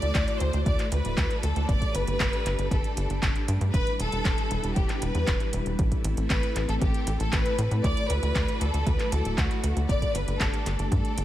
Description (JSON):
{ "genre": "italo disco", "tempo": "117 BPM", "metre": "4/4", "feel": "straight", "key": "unclear", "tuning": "A4 = 438 Hz", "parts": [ { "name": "clear studio violin section", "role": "melody", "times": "0.0-11.2 s", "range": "F#4 to D5", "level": "-31 LUFS", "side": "left 1 dB", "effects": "digital delay, shimmer reverb" }, { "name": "string machine, full ensemble", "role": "sustained chords", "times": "0.0-11.2 s", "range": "G3 to D5", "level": "-34 LUFS", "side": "equal", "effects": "ensemble chorus, shimmer reverb" }, { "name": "tight sequencer bass", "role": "bass", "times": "0.0-11.2 s", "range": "D1 to A2", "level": "-27 LUFS", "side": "equal", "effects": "tube saturation" }, { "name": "house drum kit", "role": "drums", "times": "0.0-11.2 s", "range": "handclaps, hi-hat", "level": "-33 LUFS", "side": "equal", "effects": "studio reverb" }, { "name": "electronic kick drum", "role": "drums", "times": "0.1-11.0 s", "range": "none", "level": "-28 LUFS", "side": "equal", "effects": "studio reverb" } ], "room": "light reverb", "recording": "none", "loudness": "-24 LUFS", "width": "side -13 dB against mid", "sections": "0.0-11.2 A section", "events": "none", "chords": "0.0 Dadd9; 1.7 Gsus2; 3.7 Em7; 5.8 Am; 7.8 Dadd9; 9.9 Gsus2", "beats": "0.15 0.66 1.17 | 1.69 2.20 2.71 3.23 | 3.74 4.25 4.76 5.28 | 5.79 6.30 6.82 7.33 | 7.84 8.35 8.87 9.38 | 9.89 10.40 10.92" }